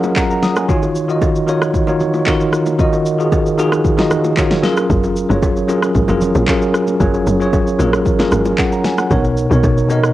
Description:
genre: amapiano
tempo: 114 BPM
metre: 4/4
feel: straight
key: unclear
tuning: A4 = 440 Hz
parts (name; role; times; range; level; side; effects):
- bell-like tine electric piano; accompaniment; 0.0-10.1 s; B2 to D#6; -14 LUFS; equal; medium stereo tremolo
- deep house drum kit; drums; 0.0-10.1 s; handclaps, kick drum, rim click, shaker, snare drum; -18 LUFS; equal; vintage 12-bit sampler grit, cassette tape
- bongos and congas; percussion; 0.0-10.0 s; none; -27 LUFS; right 2 dB; none
- tight log drum bass; bass; 4.9-9.9 s; E#1 to B1; -18 LUFS; equal; none
room: light reverb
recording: home recording on cassette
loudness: -13 LUFS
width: side -14 dB against mid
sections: 0.0-10.1 A section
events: tine electric piano fill 0.0-0.7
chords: 0.0 F#maj9; 0.7 D#m9; 4.6 F#maj9; 9.1 Bmaj7

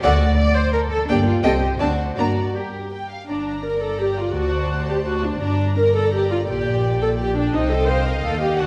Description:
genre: quick classical-period movement for string orchestra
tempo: 170 BPM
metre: 3/4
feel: rubato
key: G minor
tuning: A4 = 440 Hz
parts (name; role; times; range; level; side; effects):
- warm studio violin section; melody; 0.0-8.7 s; A4 to Bb5; -35 LUFS; equal; none
- warm studio violin section; second line; 0.0-8.7 s; C5 to Bb5; -29 LUFS; equal; none
- rich studio viola section; accompaniment; 0.0-8.7 s; A3 to C5; -24 LUFS; equal; none
- warm studio cello section; bass; 0.0-8.7 s; D2 to D5; -29 LUFS; equal; none
- warm studio double bass section; bass; 0.0-8.7 s; G1 to G2; -25 LUFS; equal; none
room: moderate concert hall reverb, RT60 2.2 s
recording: vinyl crackle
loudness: -20 LUFS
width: mono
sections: 0.0-3.3 A section; 3.3-8.7 A section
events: none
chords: 0.0 D; 1.1 Gm; 1.4 Cm; 1.8 D7; 2.2 Gm; 4.4 D7; 5.4 Gm; 6.5 Gm/Bb; 7.5 Cm

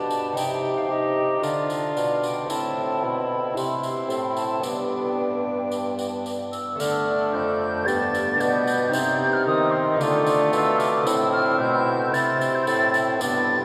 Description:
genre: classical, renaissance-style consort dance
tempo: 112 BPM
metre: 4/4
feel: straight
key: G mixolydian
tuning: A4 = 440 Hz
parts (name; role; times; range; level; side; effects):
- mellow hollow silver concert flute; melody; 0.0-13.6 s; D5 to A6; -29 LUFS; equal; none
- mellow cor anglais; second line; 0.0-13.6 s; D4 to G4; -33 LUFS; equal; none
- brilliant trombone; accompaniment; 0.0-13.6 s; A3 to Eb4; -30 LUFS; equal; none
- lute; accompaniment; 0.0-13.6 s; F2 to C5; -32 LUFS; equal; none
- clear bassoon; bass; 0.0-13.6 s; F2 to Eb3; -29 LUFS; equal; none
- tambourine; percussion; 0.1-13.5 s; none; -42 LUFS; equal; none
room: wet cathedral reverb, RT60 5.1 s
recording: recorded in a church or concert hall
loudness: -23 LUFS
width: mono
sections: 0.0-6.8 A section; 6.8-13.6 A section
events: none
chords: 0.4 Cm; 1.4 Dm; 2.5 Am; 3.6 C; 4.6 G; 6.8 Dm; 7.9 G; 8.9 Cm; 10.0 Dm; 11.1 Am; 12.1 C

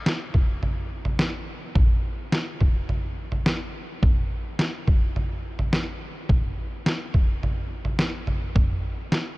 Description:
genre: dream pop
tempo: 106 BPM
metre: 4/4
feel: straight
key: none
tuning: none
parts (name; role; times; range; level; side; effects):
- lo-fi sampler-style drum kit; drums; 0.1-9.3 s; kick drum, snare drum, toms; -22 LUFS; equal; none
room: little or no reverb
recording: dark, warm production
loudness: -22 LUFS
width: side -21 dB against mid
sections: 0.0-9.4 A section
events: none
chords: none

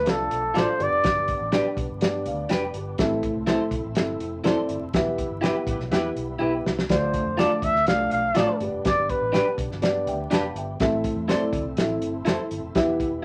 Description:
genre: uptempo 1960s-style soul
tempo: 123 BPM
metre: 4/4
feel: straight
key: unclear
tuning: A4 = 440 Hz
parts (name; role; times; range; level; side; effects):
- breathy trumpet; melody; 0.0-1.5, 6.9-9.6 s; A4 to F5; -26 LUFS; equal; none
- overdriven tonewheel organ; sustained chords; 0.0-13.2 s; F3 to E4; -42 LUFS; equal; none
- vintage muted fingered electric bass; bass; 0.0-13.2 s; E1 to G2; -37 LUFS; equal; none
- dark upright piano; accompaniment; 0.1-13.2 s; G2 to A5; -29 LUFS; equal; none
- warm soul drum kit; drums; 0.1-13.1 s; hi-hat, kick drum, snare drum; -28 LUFS; equal; none
- electric guitar at the edge of break-up; stabs; 0.5-13.2 s; D4 to D5; -29 LUFS; equal; none
- warm horn section; second line; 5.4-6.1 s; E4 to B4; -36 LUFS; equal; none
room: wet small room reverb, RT60 0.5 s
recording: vinyl crackle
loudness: -24 LUFS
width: mono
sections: 0.0-13.2 A section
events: band accent 5.0-6.9; drum fill 6.4-6.9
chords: 0.0 Dm; 0.8 G; 3.0 Am; 5.0 Em; 6.9 Dm; 8.6 G; 10.8 Am

